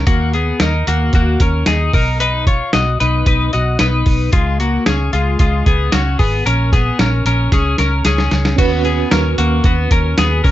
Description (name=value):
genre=jangly indie pop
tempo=113 BPM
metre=4/4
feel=straight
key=unclear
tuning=A4 = 440 Hz
part: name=twelve-string electric guitar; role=arpeggios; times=0.0-10.5 s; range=Ab3 to D#5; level=-17 LUFS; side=left 3 dB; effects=none
part: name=vintage muted fingered electric bass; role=bass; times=0.0-10.5 s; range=Ab1 to Eb2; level=-17 LUFS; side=equal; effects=none
part: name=lo-fi sampler-style drum kit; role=drums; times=0.1-10.5 s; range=crash cymbal, hi-hat, kick drum, snare drum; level=-16 LUFS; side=equal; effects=none
part: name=reed electric piano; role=accompaniment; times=8.6-10.5 s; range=Db4 to Cb5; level=-21 LUFS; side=right 10 dB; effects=fast tremolo
room=light reverb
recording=nothing above 7.8 kHz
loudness=-12 LUFS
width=side -14 dB against mid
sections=0.0-8.6 A section; 8.6-10.5 B section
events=drum fill 7.5-8.6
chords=0.1 Ebm; 1.9 B; 4.3 Db; 6.5 Bbm; 7.5 Db5; 8.6 Db7sus4/Eb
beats=| 0.07 0.60 1.14 1.67 | 2.20 2.74 3.27 3.80 | 4.33 4.87 5.40 5.93 | 6.46 6.99 7.52 8.05 | 8.59 9.12 9.65 10.18